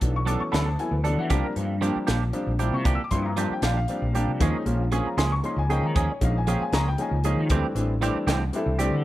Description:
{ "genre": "electric jazz fusion", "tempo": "78 BPM (dotted quarters)", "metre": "6/8", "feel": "straight", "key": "unclear", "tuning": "A4 = 441 Hz", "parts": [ { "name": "warm baby grand piano", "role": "accompaniment", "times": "0.0-9.0 s", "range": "E3 to E6", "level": "-28 LUFS", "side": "left 2 dB", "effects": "none" }, { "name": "fretless electric bass", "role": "bass", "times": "0.0-9.0 s", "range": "A1 to E3", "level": "-25 LUFS", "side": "equal", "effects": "ensemble chorus" }, { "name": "crisp fusion drum kit", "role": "drums", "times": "0.0-8.9 s", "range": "hi-hat, kick drum, snare drum", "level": "-28 LUFS", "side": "equal", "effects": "none" }, { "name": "clean electric guitar", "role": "stabs", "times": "0.3-9.0 s", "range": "E3 to A4", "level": "-30 LUFS", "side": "right 6 dB", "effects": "analog chorus, tape echo" } ], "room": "small room ambience", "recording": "none", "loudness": "-22 LUFS", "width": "side -15 dB against mid", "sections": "0.0-9.0 A section", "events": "none", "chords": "0.0 E9sus4; 1.3 C9sus4; 4.4 D#9sus4; 7.5 D9sus4" }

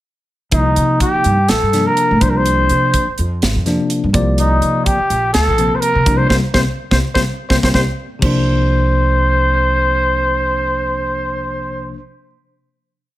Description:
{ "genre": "electric jazz fusion", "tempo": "125 BPM", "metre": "4/4", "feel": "swing 55% on 16ths", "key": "C dorian", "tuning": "A4 = 441 Hz", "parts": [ { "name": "growling trumpet", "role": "melody", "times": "0.5-12.0 s", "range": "Eb4 to C5", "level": "-16 LUFS", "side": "equal", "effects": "slapback echo" }, { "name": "bell-like tine electric piano", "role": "accompaniment", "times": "0.5-12.0 s", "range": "C3 to D5", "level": "-20 LUFS", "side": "left 2 dB", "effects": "fast stereo tremolo" }, { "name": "upright bass", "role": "bass", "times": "0.5-12.0 s", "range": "Ab1 to C3", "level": "-18 LUFS", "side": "equal", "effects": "none" }, { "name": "crisp fusion drum kit", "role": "drums", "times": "0.5-8.3 s", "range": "crash cymbal, hi-hat, kick drum, snare drum", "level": "-19 LUFS", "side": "right 1 dB", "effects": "none" } ], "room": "light reverb, studio reverb", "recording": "none", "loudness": "-13 LUFS", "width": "side -15 dB against mid", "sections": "0.5-8.2 A section; 8.2-12.1 final chord", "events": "band accent 6.3-8.2", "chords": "0.5 Cm7; 2.2 Bbadd9/C; 4.1 Ebmaj9/C; 6.1 C5; 8.2 Csus2" }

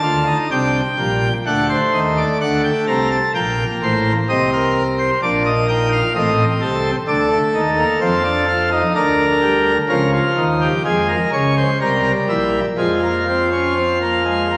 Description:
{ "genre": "classical, baroque-style 3-part fugue for pipe organ", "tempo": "63 BPM", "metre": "3/4", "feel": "straight", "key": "C minor, F minor from 9.9 s", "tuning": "A4 = 440 Hz", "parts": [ { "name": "pipe organ, plenum", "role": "solo", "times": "0.0-14.6 s", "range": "A1 to Bb5", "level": "-17 LUFS", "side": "equal", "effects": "none" } ], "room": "wet scoring stage reverb, RT60 2.0 s", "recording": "vinyl crackle", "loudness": "-17 LUFS", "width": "mono", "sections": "0.0-14.6 A section", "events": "none", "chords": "0.0 Dm; 0.5 C5; 1.5 D7; 3.4 Gm/Bb; 4.3 Cm; 6.2 Adim; 7.1 Dm; 9.0 Bb/D; 9.9 Bbm/Db; 11.8 C7; 12.8 Fm" }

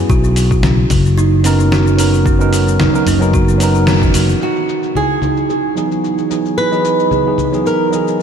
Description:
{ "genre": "sunset chillout", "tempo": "111 BPM", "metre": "4/4", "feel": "swing 53% on 16ths", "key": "E lydian", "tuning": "A4 = 440 Hz", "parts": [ { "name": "mellow tine electric piano", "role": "accompaniment", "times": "0.0-8.2 s", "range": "E3 to D#5", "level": "-19 LUFS", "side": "right 1 dB", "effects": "overdrive, auto-pan, ping-pong delay" }, { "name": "kalimba", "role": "arpeggios", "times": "0.0-8.2 s", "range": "C#4 to G#4", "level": "-18 LUFS", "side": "right 5 dB", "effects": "low-pass filter, ping-pong delay" }, { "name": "sustaining fretless electric bass", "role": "bass", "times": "0.0-4.3 s", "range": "F#1 to B1", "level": "-13 LUFS", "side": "equal", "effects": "none" }, { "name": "dusty soul sampler-style drum kit", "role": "drums", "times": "0.1-8.2 s", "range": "congas, hi-hat, shaker, snare drum", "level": "-20 LUFS", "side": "left 3 dB", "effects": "overdrive, low-pass filter on hats, low-pass filter on perc, low-pass filter on snare, low-pass filter on room" }, { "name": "electronic kick drum", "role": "drums", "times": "0.1-4.1 s", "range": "none", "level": "-16 LUFS", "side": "left 1 dB", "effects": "overdrive" }, { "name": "flamenco guitar", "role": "melody", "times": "4.4-8.2 s", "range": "F#4 to B4", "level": "-17 LUFS", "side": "right 1 dB", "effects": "diffuse ambient delay" } ], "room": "moderate cathedral reverb, RT60 5.0 s", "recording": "dreamy mix soaked in reverb", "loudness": "-11 LUFS", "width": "side -8 dB against mid", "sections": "0.0-4.4 A section; 4.4-8.2 B section", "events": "band accent 3.9; filter sweep on kalimba 4.4-8.2", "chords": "0.1 Bmaj9; 4.4 Emaj7" }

